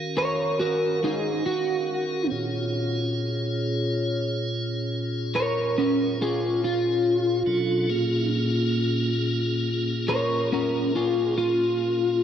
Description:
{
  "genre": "blues",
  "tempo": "46 BPM (dotted quarters)",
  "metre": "12/8",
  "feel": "straight",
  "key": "Bb minor",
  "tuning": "A4 = 440 Hz",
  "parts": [
    { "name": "tonewheel organ", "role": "sustained chords", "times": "0.0-12.2 s", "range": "Bb2 to F5", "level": "-26 LUFS", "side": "equal", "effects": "slow rotary speaker, overdrive" },
    { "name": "electric guitar at the edge of break-up", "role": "melody", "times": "0.2-12.2 s", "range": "Db4 to Db5", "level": "-24 LUFS", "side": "equal", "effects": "analog chorus" }
  ],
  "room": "wet huge ambient reverb, RT60 4.0 s",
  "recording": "dreamy mix soaked in reverb",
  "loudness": "-22 LUFS",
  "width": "side -9 dB against mid",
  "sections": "0.0-12.2 A section",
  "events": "none",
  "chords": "0.0 Ebm7; 2.3 Bbm7",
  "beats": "1.02 | 2.31 3.60 4.89 6.18 | 7.47 8.76 10.05 11.34"
}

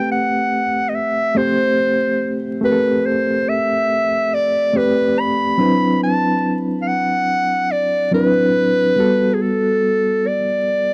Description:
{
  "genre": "R&B",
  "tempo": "71 BPM",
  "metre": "4/4",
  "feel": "swing 55% on 16ths",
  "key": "A dorian",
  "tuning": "A4 = 440 Hz",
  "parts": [
    { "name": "bright clarinet", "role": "melody", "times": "0.0-10.9 s", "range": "G#4 to B5", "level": "-20 LUFS", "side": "equal", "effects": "none" },
    { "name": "overdriven reed electric piano", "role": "accompaniment", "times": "0.0-10.9 s", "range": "F#3 to D5", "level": "-22 LUFS", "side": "equal", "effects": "fast tremolo" }
  ],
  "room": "light reverb",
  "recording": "dry, close 1970s-style studio recording, vinyl crackle",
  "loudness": "-18 LUFS",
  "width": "mono",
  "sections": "0.0-10.9 A section",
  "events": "none",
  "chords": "0.0 Am9; 5.6 D13; 9.0 Gmaj9",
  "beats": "0.09 0.94 1.78 | 2.63 3.47 4.32 5.16 | 6.01 6.85 7.70 8.54 | 9.39 10.23"
}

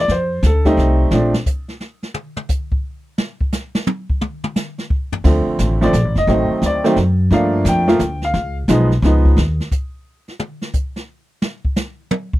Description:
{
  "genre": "jazz piano trio",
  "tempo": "174 BPM",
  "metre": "3/4",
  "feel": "swing 65% on 8ths",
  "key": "F major, Bb major from 5.2 s",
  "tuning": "A4 = 440 Hz",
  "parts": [
    { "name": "clear upright piano", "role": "melody", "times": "0.0-1.3, 5.2-9.4 s", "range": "D3 to G5", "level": "-16 LUFS", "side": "equal", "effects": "none" },
    { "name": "upright bass", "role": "bass", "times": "0.0-1.3, 5.2-9.6 s", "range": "F1 to G2", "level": "-16 LUFS", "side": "equal", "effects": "none" },
    { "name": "jazz brush drum kit", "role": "drums", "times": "0.1-12.4 s", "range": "brushed snare drum, crash cymbal, hi-hat, kick drum, snare drum, toms", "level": "-21 LUFS", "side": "equal", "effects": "none" }
  ],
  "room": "little or no reverb",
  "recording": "dry, close 1970s-style studio recording",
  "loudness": "-15 LUFS",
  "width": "side -16 dB against mid",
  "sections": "0.0-5.2 A section; 5.2-12.4 A section",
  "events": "upright piano solo 0.0-12.4; drum solo 1.1-5.2, 9.4-12.4",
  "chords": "0.1 F7; 1.1 N.C.; 5.2 Bbmaj7 (rootless); 6.3 D7b9; 7.3 Gm9; 8.3 Db9; 9.4 N.C.",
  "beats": "| 0.09 0.43 0.78 | 1.12 1.46 1.81 | 2.15 2.50 2.84 | 3.19 3.53 3.87 | 4.22 4.56 4.91 | 5.25 5.59 5.94 | 6.28 6.63 6.97 | 7.31 7.66 8.00 | 8.34 8.69 9.03 | 9.37 9.71 10.06 | 10.40 10.74 11.09 | 11.43 11.77 12.11"
}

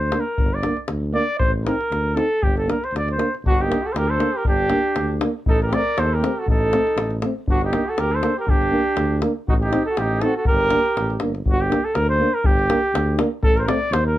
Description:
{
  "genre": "balkan folk, Balkan brass band",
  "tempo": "120 BPM",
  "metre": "2/4",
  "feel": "swing 55% on 16ths",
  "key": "G harmonic minor",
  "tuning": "A4 = 440 Hz",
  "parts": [
    { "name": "clear flugelhorn", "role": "melody", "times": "0.0-14.2 s", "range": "F#4 to D5", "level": "-21 LUFS", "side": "right 1 dB", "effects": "none" },
    { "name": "mellow tuba", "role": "bass", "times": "0.0-14.2 s", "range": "G1 to Eb2", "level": "-24 LUFS", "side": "equal", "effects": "none" },
    { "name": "breathy trombone", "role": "accompaniment", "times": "0.1-13.8 s", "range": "A3 to C4", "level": "-27 LUFS", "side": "right 5 dB", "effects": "none" },
    { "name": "mellow euphonium", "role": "accompaniment", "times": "0.1-13.8 s", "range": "C4 to Eb4", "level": "-27 LUFS", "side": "left 4 dB", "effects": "none" },
    { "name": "davul", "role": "percussion", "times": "0.1-14.1 s", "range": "none", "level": "-22 LUFS", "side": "left 1 dB", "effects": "none" },
    { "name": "warm flugelhorn", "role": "second line", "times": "3.5-11.2 s", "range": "D4 to Bb4", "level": "-29 LUFS", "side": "right 4 dB", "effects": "none" }
  ],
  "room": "moderate small room reverb, RT60 0.5 s",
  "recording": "dark, warm production",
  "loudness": "-18 LUFS",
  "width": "side -14 dB against mid",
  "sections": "0.0-3.4 A section; 3.4-11.5 B section; 11.5-14.2 B section",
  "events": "speeding up 0.0-14.2; flugelhorn solo 0.0-3.4",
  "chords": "0.0 Gm; 1.4 Adim; 2.4 Gm; 5.5 Adim; 7.5 Gm; 9.5 Adim; 10.5 Gm; 13.4 Adim",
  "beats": "| 0.39 0.90 | 1.41 1.92 | 2.43 2.93 | 3.44 3.95 | 4.45 4.96 | 5.46 5.96 | 6.47 6.97 | 7.47 7.97 | 8.47 8.97 | 9.47 9.97 | 10.47 10.96 | 11.46 11.96 | 12.45 12.95 | 13.44 13.93"
}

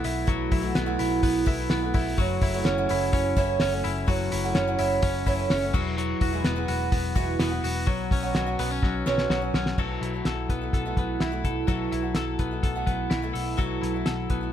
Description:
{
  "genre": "jangly indie pop",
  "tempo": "126 BPM",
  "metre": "4/4",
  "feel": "straight",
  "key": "unclear",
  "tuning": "A4 = 440 Hz",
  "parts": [
    { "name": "picked twelve-string acoustic guitar", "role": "accompaniment", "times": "0.0-14.5 s", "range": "F#2 to F#4", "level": "-29 LUFS", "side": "right 6 dB", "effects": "none" },
    { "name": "twelve-string electric guitar", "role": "arpeggios", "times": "0.0-14.5 s", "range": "F#3 to A4", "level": "-30 LUFS", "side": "left 7 dB", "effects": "tape echo" },
    { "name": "vintage muted picked electric bass", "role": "bass", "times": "0.0-14.5 s", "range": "E1 to B1", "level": "-31 LUFS", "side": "equal", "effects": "none" },
    { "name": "cloth-damped thuddy drum kit", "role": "drums", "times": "0.0-14.4 s", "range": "crash cymbal, hi-hat, kick drum, snare drum", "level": "-28 LUFS", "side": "equal", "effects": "none" }
  ],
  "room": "light reverb",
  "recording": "none",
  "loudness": "-23 LUFS",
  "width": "side -10 dB against mid",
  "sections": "0.0-9.8 A section; 9.8-14.5 B section",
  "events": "drum fill 8.8-9.8",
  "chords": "0.0 B7sus4; 2.2 F#m7; 5.7 Eadd9; 7.9 Badd9; 9.8 B7sus4",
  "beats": "| 0.28 0.76 1.23 1.71 | 2.18 2.65 3.13 3.60 | 4.08 4.55 5.03 5.50 | 5.98 6.45 6.92 7.40 | 7.87 8.35 8.82 9.30 | 9.77 10.25 10.73 11.20 | 11.68 12.16 12.63 13.11 | 13.59 14.06"
}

